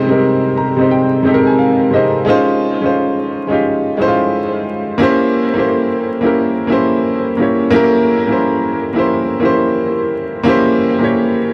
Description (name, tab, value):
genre	hip hop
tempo	88 BPM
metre	4/4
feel	swing 62% on 16ths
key	unclear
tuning	A4 = 443 Hz
part	clear upright piano	solo	0.0-11.5 s	C3 to Bb5	-14 LUFS	equal	cassette tape, low-pass filter, tape echo
room	moderate plate reverb, RT60 3.0 s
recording	echo-heavy mix, vinyl crackle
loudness	-14 LUFS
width	mono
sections	0.0-11.5 A section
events	upright piano fill 0.2-2.3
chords	0.0 Abmaj13/C; 2.3 Dbmaj9; 5.0 C7b9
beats	0.22 0.90 1.58 | 2.26 2.94 3.62 4.31 | 4.99 5.67 6.35 7.03 | 7.72 8.40 9.08 9.76 | 10.44 11.12